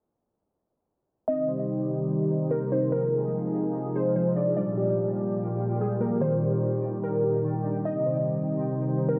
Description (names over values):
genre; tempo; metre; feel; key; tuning
hip hop; 146 BPM; 4/4; half-time; unclear; A4 = 441 Hz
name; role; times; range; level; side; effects
glassy wavetable pluck; melody; 1.3-9.2 s; Ab4 to Eb5; -32 LUFS; equal; chorus, low-pass filter, tape echo
warm analog pad; sustained chords; 1.3-9.2 s; Bb2 to D5; -30 LUFS; equal; lush chorus
glassy digital keys; arpeggios; 1.3-9.2 s; Eb3 to C5; -34 LUFS; equal; chorus, low-pass filter, tape echo
twinkling granular texture; texture; 2.2-9.2 s; C4 to G5; -43 LUFS; equal; built-in reverb
room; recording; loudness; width
moderate lush hall reverb, RT60 2.4 s; low-pass filter; -27 LUFS; mono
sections
1.3-9.2 A section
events
none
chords
1.3 Cm; 2.9 Fm7; 4.6 Gm7; 6.2 Ebmaj7; 7.9 Cm